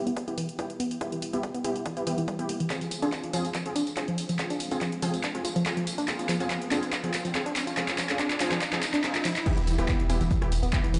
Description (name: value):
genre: driving peak-time techno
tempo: 142 BPM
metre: 4/4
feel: straight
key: unclear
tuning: A4 = 440 Hz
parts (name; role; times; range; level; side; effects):
- rave stab; stabs; 0.0-10.8 s; B3 to Ab4; -35 LUFS; equal; chorus, built-in reverb, sidechain pumping, delay
- woody wave-folded pluck; riff; 0.1-11.0 s; E3 to F4; -34 LUFS; equal; chorus, tube saturation, sidechain pumping, tape echo
- punchy analog drum machine; drums; 0.1-11.0 s; crash cymbal, handclaps, hi-hat, ride cymbal, rim click, tambourine; -35 LUFS; equal; none
- electronic kick drum; drums; 0.2-10.8 s; none; -33 LUFS; equal; high-pass filter on kick
- riser; sound effects; 4.0-9.5 s; none; -40 LUFS; equal; none
- swarming drone; drone; 10.5-11.0 s; E3 to E4; -44 LUFS; equal; none
- dusty soul sampler-style drum kit; drums; 9.5-11.0 s; hi-hat, snare drum; -51 LUFS; equal; none
- saturated sub bass; bass; 9.6-11.0 s; E1; -29 LUFS; equal; sidechain pumping, low-pass filter
room: light reverb, digital ambience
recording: played on a big sound system in a bare room, stone room reverb, nothing above 10.7 kHz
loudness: -29 LUFS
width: mono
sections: 0.0-9.5 A section; 9.5-11.0 B section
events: build-up 0.0-9.5; filter sweep on synth arpeggio sound 0.0-9.5; filter sweep on synth stab 0.0-9.5; drum fill 2.7-9.5; riser 4.0-9.5; drop 9.5-11.0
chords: 0.0 Em; 2.7 Fm; 9.5 Em